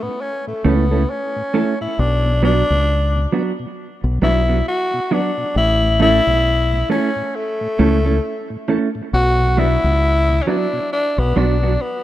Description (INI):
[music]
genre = reggae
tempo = 67 BPM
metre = 4/4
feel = swing 60% on 16ths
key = B minor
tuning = A4 = 440 Hz
[part]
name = raspy tenor saxophone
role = melody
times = 0.0-12.0 s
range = A3 to F#4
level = -19 LUFS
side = left 1 dB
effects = tape echo
[part]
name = mellow tonewheel organ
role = accompaniment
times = 0.0-11.7 s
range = A2 to D4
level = -28 LUFS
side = left 2 dB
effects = slow rotary speaker
[part]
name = mellow electric guitar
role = accompaniment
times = 0.6-11.7 s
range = F#3 to A4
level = -21 LUFS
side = right 4 dB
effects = warbly pitch drift, tape echo
[part]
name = deep dub fingered electric bass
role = bass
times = 0.6-11.8 s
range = A1 to C#2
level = -17 LUFS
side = left 1 dB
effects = none
[sound]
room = digital ambience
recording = rough home demo mix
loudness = -15 LUFS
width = side -13 dB against mid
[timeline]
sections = 0.0-12.0 A section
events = tenor saxophone solo 0.0-12.0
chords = 0.0 A; 2.0 Bm; 5.6 A; 9.1 Bm